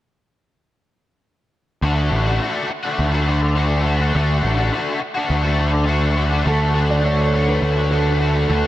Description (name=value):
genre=rock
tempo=104 BPM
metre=4/4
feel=straight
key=D major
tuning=A4 = 440 Hz
part: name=overdriven electric guitar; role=riff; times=1.8-8.7 s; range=D3 to F#4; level=-20 LUFS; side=left 2 dB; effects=ensemble chorus
part: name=fuzz picked electric bass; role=bass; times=1.8-8.6 s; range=A1 to D2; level=-18 LUFS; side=equal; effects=overdrive
part: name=concert harp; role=melody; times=6.5-8.7 s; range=A4 to D5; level=-22 LUFS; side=right 3 dB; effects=tape echo
room=moderate huge ambient reverb, RT60 3.9 s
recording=dreamy mix soaked in reverb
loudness=-16 LUFS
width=side -14 dB against mid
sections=1.8-6.5 A section; 6.5-8.7 B section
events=none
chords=1.8 D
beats=| 1.82 2.40 2.98 3.56 | 4.14 4.72 5.30 5.88 | 6.46 7.04 7.62 8.20